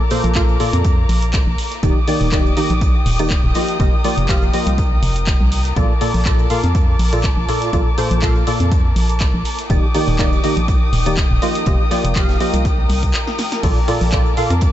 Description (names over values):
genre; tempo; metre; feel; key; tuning
piano house; 122 BPM; 4/4; swing 54% on 16ths; Bb major; A4 = 435 Hz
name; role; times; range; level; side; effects
muted chamber string section; sustained chords; 0.0-14.7 s; Bb4 to Eb6; -25 LUFS; left 2 dB; sidechain pumping
percussive organ stab; riff; 0.0-14.5 s; Bb2 to F5; -21 LUFS; equal; ensemble chorus, sidechain pumping, ping-pong delay
ethereal airy pad; texture; 0.1-14.7 s; Eb4 to A5; -34 LUFS; right 1 dB; none
modern studio drum kit; drums; 0.1-14.7 s; hi-hat, snare drum; -37 LUFS; right 3 dB; none
punchy analog drum machine; drums; 0.1-14.7 s; crash cymbal, handclaps, hi-hat, rim click, snare drum; -27 LUFS; equal; none
organ-like FM bass; bass; 0.2-14.7 s; Eb1 to F2; -18 LUFS; equal; tube saturation, sidechain pumping
electronic kick drum; drums; 0.4-14.7 s; none; -17 LUFS; equal; none
room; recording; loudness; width
light reverb, studio reverb; nothing above 8.0 kHz; -14 LUFS; side -12 dB against mid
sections
0.0-14.7 A section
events
break 13.1-13.6; drum fill 13.3-13.6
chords
0.0 Bbmaj7; 1.8 Ebmaj7; 3.6 F9sus4; 5.8 Bbmaj7; 9.7 Ebmaj7; 11.4 F9sus4; 13.6 Bbmaj7